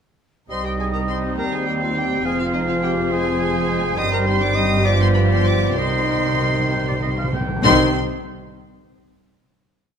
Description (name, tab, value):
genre	quick classical-period movement for symphony orchestra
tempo	63-71 BPM (dotted quarters)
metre	6/8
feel	rubato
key	C minor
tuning	A4 = 435 Hz
part	rich studio violin section	melody	0.5-8.0 s	Eb5 to Eb6	-26 LUFS	left 2 dB	none
part	mellow concert flute	second line	0.5-8.0 s	G5 to C7	-27 LUFS	right 1 dB	none
part	warm clarinet	second line	0.5-7.9 s	Eb4 to Eb5	-28 LUFS	left 2 dB	none
part	warm oboe	second line	0.5-7.9 s	C5 to G5	-29 LUFS	right 3 dB	none
part	warm studio violin section	second line	0.5-8.0 s	G3 to Ab4	-30 LUFS	left 3 dB	none
part	mellow bassoon	accompaniment	0.5-7.9 s	Eb3 to G3	-30 LUFS	right 2 dB	none
part	rich studio viola section	accompaniment	0.5-8.0 s	Eb3 to C4	-27 LUFS	equal	none
part	mellow French horn section	sustained chords	0.5-7.9 s	B3 to G4	-26 LUFS	left 6 dB	none
part	rich studio cello section	bass	0.5-8.0 s	C2 to C3	-26 LUFS	right 2 dB	none
part	rich studio double bass section	bass	0.5-8.0 s	F1 to Eb2	-24 LUFS	right 3 dB	none
part	timpani	percussion	5.8-7.9 s	C3	-28 LUFS	equal	none
room	moderate recital hall reverb, RT60 1.6 s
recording	none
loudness	-17 LUFS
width	side -7 dB against mid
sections	0.5-7.7 A section; 7.7-9.4 final chord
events	timpani fill 5.8-7.7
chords	0.5 Cm; 1.4 Cm/Eb; 2.3 Fm; 4.0 Cm/G; 4.9 G7; 5.8 Cm